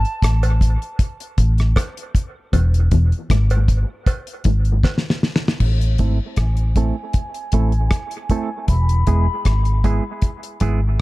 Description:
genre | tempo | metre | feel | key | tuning
dub reggae | 78 BPM | 4/4 | straight | A harmonic minor | A4 = 440 Hz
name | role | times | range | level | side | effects
vintage muted fingered electric bass | bass | 0.0-11.0 s | E1 to A1 | -16 LUFS | equal | none
damped 70s drum kit | drums | 0.0-10.8 s | crash cymbal, hi-hat, kick drum, rim click, snare drum | -18 LUFS | equal | none
cowbell | percussion | 0.4-5.0 s | none | -33 LUFS | right 5 dB | dub echo
electric guitar with an envelope filter | riff | 2.5-4.7 s | E2 to G#2 | -26 LUFS | left 3 dB | dub echo
semi-hollow electric guitar | accompaniment | 6.0-10.8 s | G#3 to A4 | -26 LUFS | right 5 dB | low-pass filter, dub echo
silver concert flute | melody | 6.4-9.4 s | G#5 to B5 | -29 LUFS | left 1 dB | low-pass filter, dub echo
room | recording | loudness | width
studio ambience | echo-heavy mix | -16 LUFS | side -19 dB against mid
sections
0.0-5.6 A section; 5.6-11.0 B section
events
break 0.0-5.6; drum fill 4.8-5.6; filter sweep 5.6-11.0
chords
0.0 N.C.; 2.5 E; 5.6 Am; 8.7 E

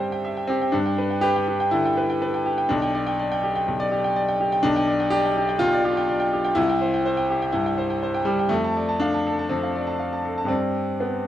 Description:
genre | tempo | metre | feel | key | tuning
classical, virtuoso piano study | 123 BPM | 4/4 | rubato | G major, C major from 4.6 s | A4 = 445 Hz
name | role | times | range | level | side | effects
bright grand piano | solo | 0.0-11.3 s | B1 to A5 | -20 LUFS | equal | none
room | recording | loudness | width
light reverb | close, detailed microphones | -20 LUFS | side -12 dB against mid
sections
0.0-11.3 A section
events
none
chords
0.0 C/G; 0.7 G; 2.7 G/B; 6.6 C; 8.5 Dm/F; 10.5 G

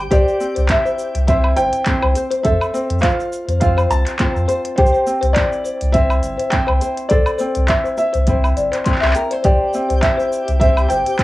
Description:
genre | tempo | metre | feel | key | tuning
folktronica | 103 BPM | 4/4 | swing 56% on 16ths | C major | A4 = 440 Hz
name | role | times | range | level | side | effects
ukulele | arpeggios | 0.0-11.2 s | C4 to C5 | -23 LUFS | right 1 dB | cassette tape
warm sub bass | bass | 0.0-11.0 s | G1 to F2 | -17 LUFS | equal | none
twinkling granular texture | texture | 0.0-0.1, 9.7-11.2 s | G4 to G5 | -32 LUFS | left 1 dB | built-in reverb, cassette tape
felt-muted upright piano | melody | 0.1-11.2 s | C5 to A5 | -20 LUFS | equal | cassette tape, plate reverb, analog delay
folk marimba with soft mallets | second line | 0.1-11.1 s | C5 to C6 | -22 LUFS | left 4 dB | cassette tape, plate reverb, tape echo
electronic kick drum | drums | 0.1-11.2 s | none | -20 LUFS | equal | none
organic electronic drum kit | drums | 0.1-11.2 s | handclaps, hi-hat, shaker, woodblock | -24 LUFS | equal | none
room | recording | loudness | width
light reverb | home recording on cassette, small room ambience | -14 LUFS | side -17 dB against mid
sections
0.1-11.2 A section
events
none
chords
0.1 C; 2.4 F; 4.8 C; 7.1 Am/C; 9.4 C

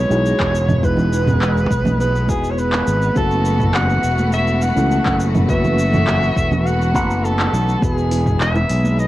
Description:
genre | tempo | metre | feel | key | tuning
sunset chillout | 103 BPM | 4/4 | straight | E major | A4 = 440 Hz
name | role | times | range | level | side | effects
mellow soprano saxophone | melody | 0.0-9.1 s | G#4 to F#5 | -21 LUFS | equal | tape echo
mellow FM electric piano | accompaniment | 0.0-9.1 s | G#3 to B4 | -25 LUFS | equal | chorus, tremolo, auto-pan, cassette tape
rich studio string section | sustained chords | 0.0-9.1 s | E3 to F#4 | -24 LUFS | left 1 dB | cassette tape
overdriven fingered electric bass | bass | 0.0-9.1 s | E1 to C#2 | -18 LUFS | equal | tube saturation
deep house drum kit | drums | 0.1-9.1 s | handclaps, hi-hat, shaker, toms | -23 LUFS | equal | overdrive, cassette tape
electronic kick drum | drums | 0.4-8.4 s | none | -23 LUFS | equal | overdrive, cassette tape
congas and bongos | percussion | 0.7-9.0 s | none | -23 LUFS | right 2 dB | none
room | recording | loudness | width
light reverb | home recording on cassette | -15 LUFS | side -15 dB against mid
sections
0.0-9.1 A section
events
none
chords
0.0 Emaj7; 3.2 B7sus4; 7.8 E

